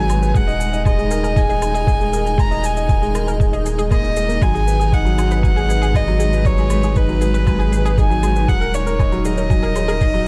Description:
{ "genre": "piano and strings electronica", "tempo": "118 BPM", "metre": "4/4", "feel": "straight", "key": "G# minor", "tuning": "A4 = 440 Hz", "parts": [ { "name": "warm violin", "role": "melody", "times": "0.0-10.3 s", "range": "B4 to A#5", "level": "-25 LUFS", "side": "equal", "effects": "shimmer reverb" }, { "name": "granular cloud pad", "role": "sustained chords", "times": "0.0-10.3 s", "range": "G#3 to A#5", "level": "-30 LUFS", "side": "equal", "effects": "built-in reverb, sidechain pumping, shimmer reverb" }, { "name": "felt-muted upright piano", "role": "riff", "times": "0.0-10.3 s", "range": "F#3 to G#5", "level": "-25 LUFS", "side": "equal", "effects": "none" }, { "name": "round analog bass", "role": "bass", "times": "0.0-10.3 s", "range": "D#1 to G#1", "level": "-22 LUFS", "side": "equal", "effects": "sidechain pumping" }, { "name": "unison pluck", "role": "arpeggios", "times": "0.1-10.1 s", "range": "G#4 to G#5", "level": "-34 LUFS", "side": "equal", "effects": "sidechain pumping, tape echo, shimmer reverb" }, { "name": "shaker and woodblock", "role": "drums", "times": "0.1-10.2 s", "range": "none", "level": "-38 LUFS", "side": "equal", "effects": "none" }, { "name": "electronic kick drum", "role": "drums", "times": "0.3-10.1 s", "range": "none", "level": "-20 LUFS", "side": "equal", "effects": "none" } ], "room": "digital ambience", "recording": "dark, warm production", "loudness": "-17 LUFS", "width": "mono", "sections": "0.0-10.3 A section", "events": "none", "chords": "0.4 D#sus4; 4.4 G#m7; 8.5 D#m7" }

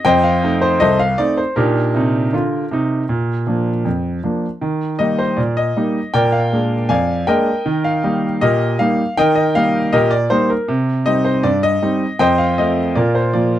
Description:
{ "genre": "ragtime piano", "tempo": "79 BPM", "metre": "2/4", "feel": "straight", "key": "Eb major", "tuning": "A4 = 441 Hz", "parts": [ { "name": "clear baby grand piano", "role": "solo", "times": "0.0-13.6 s", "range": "C2 to Ab5", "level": "-14 LUFS", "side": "equal", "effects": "none" } ], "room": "light reverb", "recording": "dry, close 1970s-style studio recording", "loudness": "-14 LUFS", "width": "side -12 dB against mid", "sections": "0.0-13.6 A section", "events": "none", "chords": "0.0 F7; 1.6 Eb/Bb; 3.1 Bb; 4.6 Eb; 6.1 Bb7; 7.7 Eb; 10.7 Cm; 12.2 F7; 13.0 Bb" }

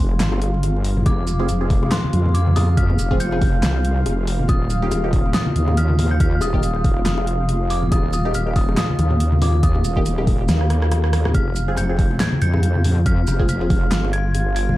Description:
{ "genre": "deep dubstep", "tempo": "140 BPM", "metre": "4/4", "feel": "swing 57% on 16ths, half-time", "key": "F dorian", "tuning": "A4 = 440 Hz", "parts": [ { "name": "dark detuned synth bell", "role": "melody", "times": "0.0-14.8 s", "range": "C6 to Ab6", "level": "-30 LUFS", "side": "left 1 dB", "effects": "chorus, dub echo" }, { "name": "deep dark ambient pad", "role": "sustained chords", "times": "0.1-14.8 s", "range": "F4 to F5", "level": "-28 LUFS", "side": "equal", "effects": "chorus, built-in reverb" }, { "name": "wobble bass", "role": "bass", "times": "0.0-14.8 s", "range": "Eb1 to F2", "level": "-19 LUFS", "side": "equal", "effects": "chorus, tube saturation" }, { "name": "deep house drum kit", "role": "drums", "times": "0.2-14.7 s", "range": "handclaps, hi-hat, rim click, shaker, snare drum", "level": "-25 LUFS", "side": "equal", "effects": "none" }, { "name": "bongos and congas", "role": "percussion", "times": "0.3-14.8 s", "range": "none", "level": "-27 LUFS", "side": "left 1 dB", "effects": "none" }, { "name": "electronic kick drum", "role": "drums", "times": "1.1-13.8 s", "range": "none", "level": "-19 LUFS", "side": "equal", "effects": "none" }, { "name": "filtered dub chord stab", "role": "stabs", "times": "1.4-13.7 s", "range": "Bb3 to Ab4", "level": "-30 LUFS", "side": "right 1 dB", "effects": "phaser, analog chorus, dub echo" } ], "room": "little or no reverb", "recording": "dark, warm production, vinyl crackle", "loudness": "-16 LUFS", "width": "side -16 dB against mid", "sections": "0.0-14.8 A section", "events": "kick drops out 10.5-11.3; drum fill 10.5-11.3", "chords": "0.0 F5; 4.5 N.C.; 11.3 Fm" }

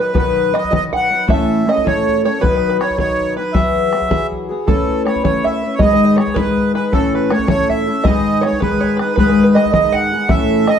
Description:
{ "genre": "celtic folk, Celtic jig", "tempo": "106 BPM (dotted quarters)", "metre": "6/8", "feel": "straight", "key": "unclear", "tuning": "A4 = 440 Hz", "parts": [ { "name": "accordion", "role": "melody", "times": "0.0-10.8 s", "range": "A4 to F#5", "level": "-19 LUFS", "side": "right 2 dB", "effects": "plate reverb" }, { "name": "open-back banjo", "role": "second line", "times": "0.0-10.8 s", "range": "A4 to F#5", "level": "-21 LUFS", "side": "right 3 dB", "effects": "none" }, { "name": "fingerpicked twelve-string acoustic guitar", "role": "accompaniment", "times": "0.0-10.8 s", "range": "G#2 to B4", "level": "-16 LUFS", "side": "left 2 dB", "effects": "none" }, { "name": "bodhran", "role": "percussion", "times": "0.1-10.8 s", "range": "none", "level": "-19 LUFS", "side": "equal", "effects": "none" } ], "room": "wet studio reverb, RT60 0.5 s", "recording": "heard from further back in the room", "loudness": "-13 LUFS", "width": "side -8 dB against mid", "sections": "0.0-4.7 A section; 4.7-10.8 A section", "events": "none", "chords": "0.0 B; 1.3 A; 2.4 B; 3.5 Eadd9; 4.7 Aadd9; 5.8 G#m; 6.9 A; 8.1 G#m" }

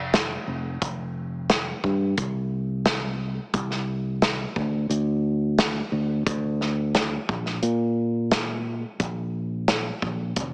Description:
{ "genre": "folk rock and heartland rock", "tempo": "88 BPM", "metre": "4/4", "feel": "straight", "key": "unclear", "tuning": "A4 = 440 Hz", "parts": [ { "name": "fingered electric bass", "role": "bass", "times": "0.0-10.5 s", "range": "F1 to Bb2", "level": "-28 LUFS", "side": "equal", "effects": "none" }, { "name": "natural country drum kit", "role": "drums", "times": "0.1-10.5 s", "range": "hi-hat, kick drum, snare drum", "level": "-28 LUFS", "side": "equal", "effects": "none" } ], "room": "light reverb", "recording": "heavily compressed radio sound, small speaker sound", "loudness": "-26 LUFS", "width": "mono", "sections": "0.0-10.5 A section", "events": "none", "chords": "none" }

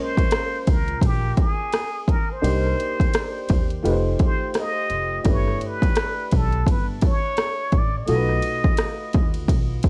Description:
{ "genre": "hip hop, jazz-hop", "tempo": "85 BPM", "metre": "4/4", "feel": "swing 61% on 16ths", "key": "unclear", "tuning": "A4 = 440 Hz", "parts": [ { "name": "trumpet with plunger mute", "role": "melody", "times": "0.0-9.3 s", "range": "G4 to Eb5", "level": "-30 LUFS", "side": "equal", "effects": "tape echo" }, { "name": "warm upright piano", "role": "accompaniment", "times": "0.0-9.9 s", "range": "Ab3 to C5", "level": "-31 LUFS", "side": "equal", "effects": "none" }, { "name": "techno drum kit", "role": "drums", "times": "0.2-9.9 s", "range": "hi-hat, kick drum, ride cymbal, rim click", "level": "-23 LUFS", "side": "equal", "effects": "vintage 12-bit sampler grit" }, { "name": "upright bass", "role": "bass", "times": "0.7-9.8 s", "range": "F1 to Eb2", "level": "-28 LUFS", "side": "equal", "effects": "none" } ], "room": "light reverb", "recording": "cassette tape", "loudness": "-22 LUFS", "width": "mono", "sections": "0.0-9.9 A section", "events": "none", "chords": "0.0 Bbm9; 2.4 Cm7; 3.8 F9; 5.3 G6; 8.1 B7#11" }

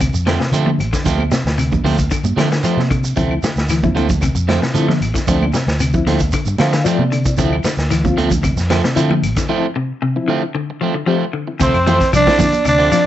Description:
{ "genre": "afrobeat", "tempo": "114 BPM", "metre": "4/4", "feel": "straight", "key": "D minor", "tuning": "A4 = 440 Hz", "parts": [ { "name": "clean electric guitar", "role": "arpeggios", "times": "0.0-13.1 s", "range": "C3 to F3", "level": "-22 LUFS", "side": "left 5 dB", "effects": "spring reverb" }, { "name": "electric guitar at the edge of break-up", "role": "stabs", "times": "0.0-12.9 s", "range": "F3 to C4", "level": "-22 LUFS", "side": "right 6 dB", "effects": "none" }, { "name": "fingered electric bass", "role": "bass", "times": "0.0-12.9 s", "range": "A1 to D3", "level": "-18 LUFS", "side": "equal", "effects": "none" }, { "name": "vintage drum kit", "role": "drums", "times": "0.0-13.0 s", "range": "hi-hat, kick drum, snare drum", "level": "-21 LUFS", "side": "equal", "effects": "none" }, { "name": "claves", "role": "percussion", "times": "0.0-13.1 s", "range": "none", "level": "-32 LUFS", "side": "left 6 dB", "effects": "none" }, { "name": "shekere", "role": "percussion", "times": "0.0-13.1 s", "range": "none", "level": "-28 LUFS", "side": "right 3 dB", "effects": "none" }, { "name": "congas", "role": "percussion", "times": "0.3-12.7 s", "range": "none", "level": "-23 LUFS", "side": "right 5 dB", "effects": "none" }, { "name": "reed electric piano", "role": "accompaniment", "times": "3.2-13.0 s", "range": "F3 to F5", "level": "-21 LUFS", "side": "left 4 dB", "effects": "fast tremolo" }, { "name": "raspy tenor saxophone", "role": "melody", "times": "11.6-13.1 s", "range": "C4 to D4", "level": "-14 LUFS", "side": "right 1 dB", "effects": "none" }, { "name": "bright trumpet", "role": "second line", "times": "11.6-13.1 s", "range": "C5 to D5", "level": "-22 LUFS", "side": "right 4 dB", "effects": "none" } ], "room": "light reverb", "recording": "nothing above 7.9 kHz", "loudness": "-14 LUFS", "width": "side -12 dB against mid", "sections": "0.0-11.6 A section; 11.6-13.1 B section", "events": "reed electric piano fill 6.3-7.4; break 9.5-11.6", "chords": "0.0 Dm7" }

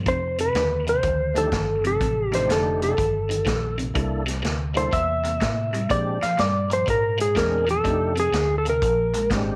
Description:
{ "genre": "electric blues shuffle", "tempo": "123 BPM", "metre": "4/4", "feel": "swing 66% on 8ths", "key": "F mixolydian", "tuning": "A4 = 439 Hz", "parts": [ { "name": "overdriven semi-hollow guitar", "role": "riff", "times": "0.0-9.6 s", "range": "F2 to Bb3", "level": "-32 LUFS", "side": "equal", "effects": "phaser" }, { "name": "vintage muted fingered electric bass", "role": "bass", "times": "0.0-9.6 s", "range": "F1 to Bb2", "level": "-30 LUFS", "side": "equal", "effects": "none" }, { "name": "clean lap steel guitar", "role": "melody", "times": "0.1-9.3 s", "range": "Ab4 to F5", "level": "-25 LUFS", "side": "equal", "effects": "none" }, { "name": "vintage drum kit", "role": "drums", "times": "0.1-9.5 s", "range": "hi-hat, kick drum, snare drum", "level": "-32 LUFS", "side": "equal", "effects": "none" }, { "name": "tonewheel organ", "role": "accompaniment", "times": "1.3-9.6 s", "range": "Ab3 to A4", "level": "-33 LUFS", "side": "equal", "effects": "slow rotary speaker, overdrive, chorus vibrato" } ], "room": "light reverb, studio reverb", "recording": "none", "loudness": "-23 LUFS", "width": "mono", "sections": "0.0-9.6 A section", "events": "none", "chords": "0.1 F13; 4.0 C13; 5.9 Bb13; 7.8 F13; 8.8 Bb13" }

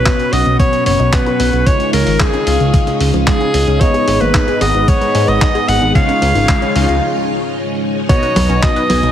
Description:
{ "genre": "italo disco", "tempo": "112 BPM", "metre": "4/4", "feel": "straight", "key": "unclear", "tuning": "A4 = 440 Hz", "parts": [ { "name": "edgy alto saxophone", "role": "melody", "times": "0.0-9.1 s", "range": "G#4 to F#5", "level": "-17 LUFS", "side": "equal", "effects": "ping-pong delay" }, { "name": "string machine, full ensemble", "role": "sustained chords", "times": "0.0-9.1 s", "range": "F#3 to D#5", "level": "-21 LUFS", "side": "equal", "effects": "phaser, ensemble chorus" }, { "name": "chorused polysynth", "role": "stabs", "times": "0.0-9.1 s", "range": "G#2 to G#5", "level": "-19 LUFS", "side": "equal", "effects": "ping-pong delay" }, { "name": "fat analog bass", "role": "bass", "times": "0.0-9.1 s", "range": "F#1 to G#2", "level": "-16 LUFS", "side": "equal", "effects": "none" }, { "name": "analog pluck", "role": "arpeggios", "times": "0.1-9.1 s", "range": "C#3 to B4", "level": "-24 LUFS", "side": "left 4 dB", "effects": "chorus, ping-pong delay" }, { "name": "dusty soul sampler-style drum kit", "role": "drums", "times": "0.1-9.1 s", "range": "congas, handclaps, hi-hat", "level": "-21 LUFS", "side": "equal", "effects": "high-pass filter on hats, high-pass filter on snare, high-pass filter on toms, high-pass filter on perc, high-pass filter on room" }, { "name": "electronic kick drum", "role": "drums", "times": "0.1-8.7 s", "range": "none", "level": "-14 LUFS", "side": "equal", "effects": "none" } ], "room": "moderate plate reverb, RT60 1.3 s, digital ambience", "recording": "heavily compressed radio sound, multiband compression", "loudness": "-11 LUFS", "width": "side -10 dB against mid", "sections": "0.0-8.1 A section; 8.1-9.1 B section", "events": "filter sweep on analog polysynth 0.0-8.1; break 7.0-8.1", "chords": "0.0 Bsus2; 1.7 C#add9; 3.8 G#m; 6.0 C#add9; 8.1 B" }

